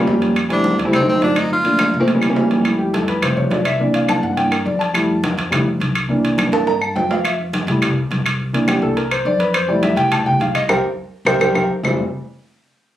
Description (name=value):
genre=Afro-Cuban jazz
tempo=209 BPM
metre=4/4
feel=straight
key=F major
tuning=A4 = 438 Hz
part: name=warm grand piano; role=accompaniment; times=0.0-12.0 s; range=E3 to Bb5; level=-17 LUFS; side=equal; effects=none
part: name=upright bass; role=bass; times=0.0-12.0 s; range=F1 to G2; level=-25 LUFS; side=equal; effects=none
part: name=congas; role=percussion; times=0.1-11.9 s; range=none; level=-25 LUFS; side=equal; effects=none
part: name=timbales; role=percussion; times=0.1-11.9 s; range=none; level=-23 LUFS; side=right 4 dB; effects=none
part: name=claves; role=percussion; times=0.4-11.9 s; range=none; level=-23 LUFS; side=left 1 dB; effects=none
part: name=bright tenor saxophone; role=melody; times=0.5-2.0 s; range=C4 to F4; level=-18 LUFS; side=equal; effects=none
room=moderate club reverb, RT60 0.6 s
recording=recorded on a phone in the room, studio ambience, compression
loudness=-15 LUFS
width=side -12 dB against mid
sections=0.0-2.6 A section; 2.6-11.8 B section; 11.8-13.0 C section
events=grand piano solo 2.6-11.8; drum fill 6.5-7.2, 11.3-11.8; band accent 10.7-11.8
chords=0.4 Fmaj9; 0.9 D7b9; 1.5 Gm7; 2.1 C7b9; 2.6 Fmaj7; 3.8 C7; 4.9 Fmaj7; 6.1 C7; 7.2 Fmaj7; 8.4 C7; 9.5 Fmaj7; 10.7 C5; 11.8 Fmaj7